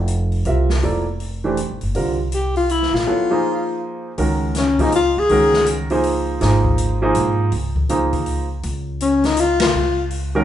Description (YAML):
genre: modal jazz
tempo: 162 BPM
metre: 3/4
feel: swing 64% on 8ths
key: Db major from 4.2 s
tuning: A4 = 439 Hz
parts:
  - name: upright bass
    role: bass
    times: 0.0-10.4 s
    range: F1 to Ab2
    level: -22 LUFS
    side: equal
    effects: none
  - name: open jazz drum kit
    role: drums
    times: 0.1-10.2 s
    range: hi-hat, kick drum, ride cymbal, snare drum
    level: -26 LUFS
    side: left 2 dB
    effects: none
  - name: clear upright piano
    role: accompaniment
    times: 0.5-10.4 s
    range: D3 to E5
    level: -20 LUFS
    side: right 2 dB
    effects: none
  - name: warm tenor saxophone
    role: melody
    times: 2.3-5.7, 9.0-10.1 s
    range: Db4 to Ab4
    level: -17 LUFS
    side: left 3 dB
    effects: none
room: moderate large studio reverb, RT60 0.9 s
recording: band playing live in one room, nothing above 11.0 kHz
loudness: -16 LUFS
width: side -11 dB against mid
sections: 0.0-4.2 A section; 4.2-10.4 B section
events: band accent 9.6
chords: 0.0 Fmaj9; 3.1 Ab13; 4.2 Dbmaj9